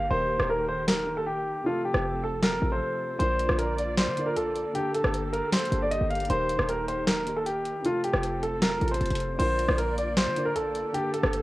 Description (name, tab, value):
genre	hip hop, trap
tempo	155 BPM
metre	4/4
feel	half-time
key	unclear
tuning	A4 = 440 Hz
part	clear concert grand piano	melody	0.0-11.4 s	F4 to F5	-28 LUFS	equal	low-pass filter, cassette tape
part	dark concert grand piano	accompaniment	0.0-11.4 s	C3 to Bb4	-34 LUFS	right 1 dB	low-pass filter, cassette tape
part	warm studio string section	sustained chords	0.0-11.4 s	Eb3 to D5	-37 LUFS	right 1 dB	cassette tape
part	short 808-style bass	bass	0.0-11.4 s	Eb1 to D3	-31 LUFS	equal	none
part	booming analog drum machine	drums	0.4-11.4 s	crash cymbal, hi-hat, rim click, snare drum	-28 LUFS	equal	cassette tape
room	light reverb, small room ambience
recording	home recording on cassette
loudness	-24 LUFS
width	side -18 dB against mid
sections	0.0-9.4 A section; 9.4-11.4 B section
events	break 0.0-3.2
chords	0.1 Eb; 1.7 F; 3.2 Bb; 4.8 Gmadd9; 6.3 Eb; 7.8 F; 9.4 Bb